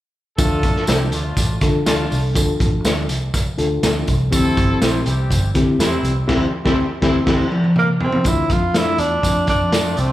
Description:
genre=uptempo 1960s-style soul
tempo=122 BPM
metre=4/4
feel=straight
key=D minor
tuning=A4 = 440 Hz
part: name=clear horn section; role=second line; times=0.4-10.1 s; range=E3 to A4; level=-27 LUFS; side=equal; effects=slapback echo
part: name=mellow reed electric piano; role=accompaniment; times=0.4-9.5 s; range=A3 to A4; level=-22 LUFS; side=left 3 dB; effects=fast tremolo, slapback echo
part: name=vintage muted fingered electric bass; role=bass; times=0.4-10.1 s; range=G1 to D3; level=-21 LUFS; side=equal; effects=none
part: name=raw garage drum kit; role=drums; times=0.4-10.1 s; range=crash cymbal, hi-hat, kick drum, snare drum, toms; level=-19 LUFS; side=equal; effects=none
part: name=tambourine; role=percussion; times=0.4-10.1 s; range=none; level=-31 LUFS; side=right 2 dB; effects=none
part: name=electric guitar through a small old amp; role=stabs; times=0.9-9.9 s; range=E4 to D5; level=-29 LUFS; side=right 3 dB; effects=slapback echo
part: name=mellow tenor saxophone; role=melody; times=7.8-10.1 s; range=Bb3 to F4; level=-19 LUFS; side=right 1 dB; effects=slapback echo
room=light reverb, small room ambience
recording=live gig heard through the venue's PA, club reverb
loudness=-15 LUFS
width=side -14 dB against mid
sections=0.4-8.3 A section; 8.3-10.1 B section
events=band accent 6.3-8.3; drum fill 7.3-8.3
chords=0.4 Dm; 4.3 C; 8.3 Dm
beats=| 0.38 0.87 1.37 1.86 | 2.35 2.85 3.34 3.83 | 4.33 4.82 5.31 5.80 | 6.29 6.78 7.27 7.76 | 8.26 8.74 9.24 9.72

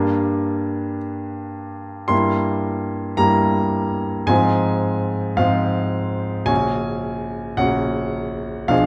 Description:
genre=classical, romantic nocturne for solo piano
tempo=54 BPM (dotted quarters)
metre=12/8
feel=rubato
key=unclear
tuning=A4 = 440 Hz
part: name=clear grand piano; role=solo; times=0.0-8.9 s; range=Bb1 to C6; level=-21 LUFS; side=equal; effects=none
room=moderate recital hall reverb, RT60 1.3 s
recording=none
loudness=-21 LUFS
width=mono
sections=0.0-8.9 A section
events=none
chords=0.0 Gm; 2.1 C7/G; 4.3 Fm/Ab; 6.5 Gb/Bb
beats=0.98 | 2.12 3.21 4.30 5.41 | 6.50 7.61 8.72

